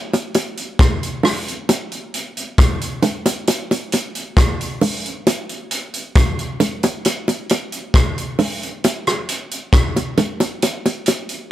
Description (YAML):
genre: reggae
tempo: 67 BPM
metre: 4/4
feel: straight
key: none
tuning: none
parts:
  - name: vintage drum kit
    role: drums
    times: 0.1-11.5 s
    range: hi-hat, kick drum, rim click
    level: -18 LUFS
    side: equal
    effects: none
  - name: bongos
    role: percussion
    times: 0.1-11.3 s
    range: none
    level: -19 LUFS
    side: right 1 dB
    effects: none
room: light reverb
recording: none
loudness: -17 LUFS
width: side -13 dB against mid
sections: 0.0-11.5 A section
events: none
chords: none